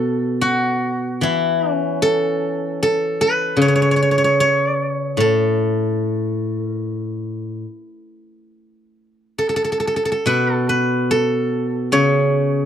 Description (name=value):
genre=chinese traditional, Chinese solo plucked strings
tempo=64-76 BPM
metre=4/4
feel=rubato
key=A gong mode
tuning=A4 = 442 Hz
part: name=steel-string zither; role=solo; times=0.0-12.7 s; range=A2 to C#5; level=-16 LUFS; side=equal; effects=none
room=light reverb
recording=dry, close 1970s-style studio recording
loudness=-16 LUFS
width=side -9 dB against mid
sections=0.0-10.3 A section; 10.3-12.7 B section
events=none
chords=none